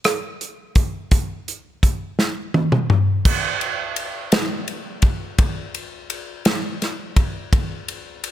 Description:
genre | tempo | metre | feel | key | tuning
pop | 56 BPM (dotted quarters) | 6/8 | straight | none | none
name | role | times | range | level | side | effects
natural country drum kit | drums | 0.0-8.3 s | crash cymbal, hi-hat, kick drum, ride cymbal, rim click, snare drum, toms | -19 LUFS | equal | none
room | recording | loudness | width
little or no reverb | none | -19 LUFS | side -12 dB against mid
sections
0.0-3.3 A section; 3.3-8.3 B section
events
drum fill 2.2-3.3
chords
none

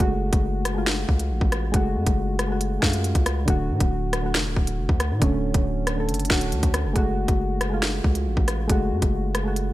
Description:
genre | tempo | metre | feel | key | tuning
hip hop, drill | 138 BPM | 4/4 | half-time | F# harmonic minor | A4 = 440 Hz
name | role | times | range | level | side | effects
soft electric-piano-like synth keys | accompaniment | 0.0-9.7 s | D3 to A4 | -26 LUFS | equal | chorus, low-pass filter
long sustained 808-style bass | bass | 0.0-9.7 s | D1 to A2 | -26 LUFS | equal | none
drill drum kit | drums | 0.0-9.7 s | finger snaps, hi-hat, kick drum, rim click, snare drum | -23 LUFS | equal | none
room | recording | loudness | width
digital ambience | none | -20 LUFS | side -16 dB against mid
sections
0.0-9.7 A section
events
none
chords
0.0 F#madd9; 3.5 D; 7.0 F#madd9

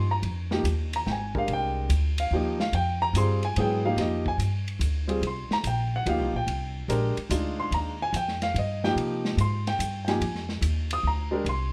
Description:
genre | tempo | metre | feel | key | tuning
modal jazz | 144 BPM | 3/4 | swing 67% on 8ths | unclear | A4 = 440 Hz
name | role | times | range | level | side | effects
warm grand piano | accompaniment | 0.0-11.7 s | F3 to Eb6 | -30 LUFS | equal | none
upright bass | bass | 0.0-11.7 s | Ab1 to C3 | -30 LUFS | equal | none
vintage drum kit | drums | 0.2-11.6 s | hi-hat, kick drum, ride cymbal, snare drum | -38 LUFS | equal | none
room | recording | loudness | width
moderate studio reverb, RT60 0.8 s | none | -27 LUFS | mono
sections
0.0-11.7 A section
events
none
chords
0.2 Fm9; 5.2 Cm9; 10.2 Fm7

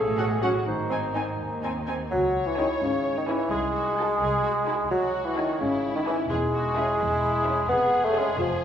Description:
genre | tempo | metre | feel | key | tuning
cinematic | 86 BPM (dotted quarters) | 6/8 | straight | C# minor | A4 = 440 Hz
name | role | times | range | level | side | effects
folk marimba with soft mallets | melody | 0.0-8.6 s | C#4 to B4 | -29 LUFS | left 2 dB | none
dark cor anglais | second line | 0.0-1.9 s | D#4 to A4 | -33 LUFS | equal | none
warm clarinet | second line | 0.0-1.7 s | G#4 to B#4 | -33 LUFS | right 2 dB | none
warm French horn section | sustained chords | 0.0-1.8 s | D#3 to A3 | -39 LUFS | left 2 dB | none
warm studio cello section | bass | 0.0-8.6 s | B#1 to A2 | -37 LUFS | right 2 dB | none
warm studio double bass section | bass | 0.0-8.6 s | E1 to D#2 | -34 LUFS | right 1 dB | none
dark studio violin section | melody | 0.2-8.6 s | E4 to G#5 | -34 LUFS | left 2 dB | none
bright small flute group | second line | 0.2-1.9 s | F#5 to G#5 | -37 LUFS | right 1 dB | none
dark studio violin section | second line | 0.2-8.3 s | D#4 to G#5 | -38 LUFS | left 2 dB | none
warm bassoon | accompaniment | 0.2-8.6 s | C#3 to C#4 | -26 LUFS | equal | none
warm studio viola section | accompaniment | 0.2-8.3 s | B#3 to G#4 | -37 LUFS | right 1 dB | none
room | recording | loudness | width
wet scoring stage reverb, RT60 1.8 s | recorded in a church or concert hall, nothing above 10.3 kHz | -23 LUFS | side -9 dB against mid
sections
0.0-2.1 A section; 2.1-8.6 B section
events
none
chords
0.0 F#m/A; 0.7 G#; 2.1 C#m; 3.5 G#7/B#; 4.9 C#m; 6.3 C#m/E; 7.7 C#/E#

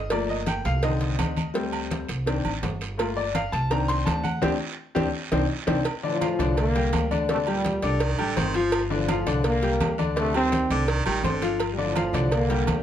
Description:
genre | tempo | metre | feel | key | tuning
latin, salsa | 167 BPM | 4/4 | straight | G minor | A4 = 440 Hz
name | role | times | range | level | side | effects
clear grand piano | accompaniment | 0.0-12.8 s | D3 to D6 | -27 LUFS | left 4 dB | none
upright bass | bass | 0.0-12.8 s | G1 to D2 | -28 LUFS | right 1 dB | none
agogo bells and timbales | percussion | 0.1-12.8 s | none | -34 LUFS | right 6 dB | none
congas | percussion | 0.1-12.8 s | none | -31 LUFS | left 2 dB | none
cowbell | percussion | 0.1-12.8 s | none | -32 LUFS | right 3 dB | none
guiro | percussion | 0.1-12.8 s | none | -39 LUFS | right 7 dB | none
clear trombone section | melody | 6.0-12.8 s | A2 to C4 | -26 LUFS | equal | none
edgy baritone saxophone | second line | 7.8-11.6 s | D3 to F3 | -28 LUFS | right 4 dB | none
room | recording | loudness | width
moderate studio reverb, RT60 0.7 s | dark, warm production | -22 LUFS | side -10 dB against mid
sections
0.0-5.9 A section; 5.9-12.8 B section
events
grand piano solo 0.0-5.9; band accent 4.4-5.9; drum fill 4.8-5.9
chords
0.1 Gm7; 0.8 Cmadd9; 1.6 D7sus4; 2.3 Cmadd9; 3.0 Gm7; 3.7 Cmadd9; 4.4 D7sus4; 5.1 Cmadd9; 5.9 F6; 6.6 Csus2; 8.0 G5; 9.5 Csus2; 10.9 G5; 12.3 Csus2

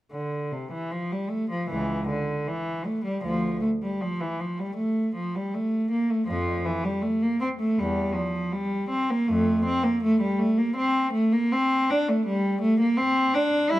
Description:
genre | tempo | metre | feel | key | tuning
classical, baroque-style suite movement for unaccompanied cello | 80 BPM | 4/4 | rubato | unclear | A4 = 441 Hz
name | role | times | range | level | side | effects
rich cello | solo | 0.1-13.8 s | C#2 to E4 | -23 LUFS | equal | none
room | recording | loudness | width
moderate large studio reverb, RT60 1.4 s | none | -23 LUFS | side -15 dB against mid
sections
0.1-13.8 A section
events
none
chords
none

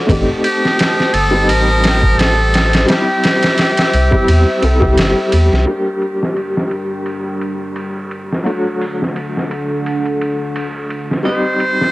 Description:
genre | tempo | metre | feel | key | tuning
trip hop | 86 BPM | 4/4 | swing 56% on 16ths | G harmonic minor | A4 = 435 Hz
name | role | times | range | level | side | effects
warm upright piano | accompaniment | 0.0-11.9 s | F#3 to A4 | -19 LUFS | left 1 dB | tremolo, cassette tape, tape echo
dark analog pad | sustained chords | 0.0-11.9 s | D3 to E6 | -21 LUFS | equal | chorus, cassette tape
round analog bass | bass | 0.1-5.7 s | G1 to E2 | -14 LUFS | equal | tube saturation
trip hop sampler-style drum kit | drums | 0.1-11.9 s | hi-hat, kick drum, ride cymbal, snare drum | -18 LUFS | equal | low-pass filter on cymbals, cassette tape, low-pass filter on kick, low-pass filter on snare, low-pass filter on hats
trumpet with metal mute | melody | 0.4-4.9, 11.3-11.9 s | G4 to C5 | -18 LUFS | equal | tape echo
semi-hollow electric guitar | arpeggios | 11.3-11.6 s | Eb5 | -24 LUFS | equal | vintage 12-bit sampler grit, cassette tape
room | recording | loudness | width
light reverb | home recording on cassette | -12 LUFS | side -18 dB against mid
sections
0.0-5.7 A section; 5.7-11.9 B section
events
none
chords
0.1 Am7b5; 2.9 C; 5.7 Gm; 8.5 D; 11.3 Am7b5 (rootless)

